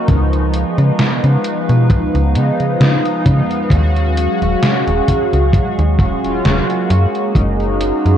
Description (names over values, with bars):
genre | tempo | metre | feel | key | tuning
vaporwave | 66 BPM | 4/4 | swing 55% on 16ths | unclear | A4 = 436 Hz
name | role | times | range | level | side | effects
mellow synth brass | accompaniment | 0.0-8.2 s | E#3 to F#4 | -18 LUFS | equal | phaser, analog chorus, ping-pong delay
warbly tape-like pad | sustained chords | 0.0-8.2 s | G#4 to D#6 | -22 LUFS | equal | chorus, built-in reverb, phaser
slap-like FM bass | bass | 0.1-8.2 s | D#1 to C#3 | -14 LUFS | equal | none
gated 80s digital drum machine | drums | 0.1-8.2 s | hi-hat, snare drum | -18 LUFS | right 1 dB | gated reverb, gated reverb snare, overdrive
kick drum | drums | 0.1-7.6 s | none | -16 LUFS | equal | none
room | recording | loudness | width
moderate plate reverb, RT60 3.0 s | dreamy mix soaked in reverb, cassette tape | -12 LUFS | side -10 dB against mid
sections
0.0-8.2 A section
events
none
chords
0.1 C#7; 3.7 D#m11; 6.9 F#69